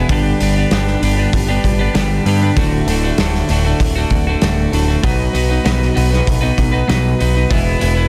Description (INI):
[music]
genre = quiet-loud alternative rock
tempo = 97 BPM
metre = 4/4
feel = straight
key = D major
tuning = A4 = 445 Hz
[part]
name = twelve-string electric guitar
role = arpeggios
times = 0.0-8.1 s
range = D2 to B4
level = -19 LUFS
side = equal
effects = plate reverb
[part]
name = growling picked electric bass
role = bass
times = 0.0-8.1 s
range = D1 to G2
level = -19 LUFS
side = equal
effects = overdrive
[part]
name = loose indie drum kit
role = drums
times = 0.1-8.0 s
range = hi-hat, kick drum, snare drum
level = -21 LUFS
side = equal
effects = none
[sound]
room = light reverb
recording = dense, heavily limited modern master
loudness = -15 LUFS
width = mono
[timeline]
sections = 0.0-8.1 A section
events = none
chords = 0.1 G; 2.6 D; 5.0 B; 7.5 E